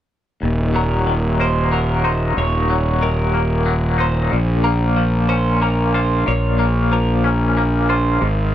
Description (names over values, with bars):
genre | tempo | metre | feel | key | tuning
rock | 62 BPM (dotted quarters) | 6/8 | straight | Eb dorian | A4 = 440 Hz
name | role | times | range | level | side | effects
twangy electric guitar | arpeggios | 0.4-8.5 s | Eb2 to F4 | -22 LUFS | left 4 dB | tremolo, tape echo
fuzz fingered electric bass | bass | 0.4-8.5 s | Eb1 to Bb1 | -17 LUFS | equal | overdrive
twelve-string electric guitar | arpeggios | 0.8-8.2 s | Bb4 to Db5 | -24 LUFS | right 5 dB | tape echo
room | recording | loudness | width
little or no reverb | dark, warm production | -15 LUFS | side -11 dB against mid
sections
0.4-8.5 A section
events
none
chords
0.4 Ebm7; 4.3 Bbm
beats
| 0.42 1.40 | 2.37 3.34 | 4.32 5.29 | 6.26 7.24 | 8.21